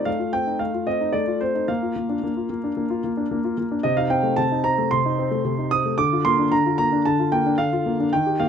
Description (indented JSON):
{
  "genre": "classical-period piano sonatina",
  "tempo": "111 BPM",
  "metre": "4/4",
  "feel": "straight",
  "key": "Bb major",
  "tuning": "A4 = 440 Hz",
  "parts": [
    { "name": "warm concert grand piano", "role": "solo", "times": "0.0-8.5 s", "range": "C3 to Eb6", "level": "-20 LUFS", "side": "equal", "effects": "none" }
  ],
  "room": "light reverb",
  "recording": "close, detailed microphones",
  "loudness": "-20 LUFS",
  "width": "side -7 dB against mid",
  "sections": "0.0-8.5 A section",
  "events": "none",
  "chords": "0.0 F7/A; 1.7 Bb; 3.8 Cm6; 6.0 Bb/D"
}